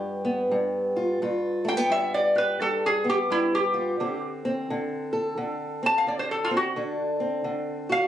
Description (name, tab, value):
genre	acoustic country blues, solo or duo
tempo	86 BPM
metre	4/4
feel	swing 62% on 8ths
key	unclear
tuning	A4 = 444 Hz
part	fingerpicked old ladder-braced acoustic guitar	accompaniment	0.0-8.1 s	G2 to A4	-27 LUFS	equal	none
part	lap resonator guitar	melody	1.7-8.1 s	E4 to A5	-23 LUFS	equal	none
room	light reverb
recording	recorded on a phone in the room, studio reverb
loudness	-23 LUFS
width	side -11 dB against mid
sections	0.0-8.1 A section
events	resonator guitar played with a steel bar solo 0.0-8.1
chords	0.0 G7; 4.0 D7(no3)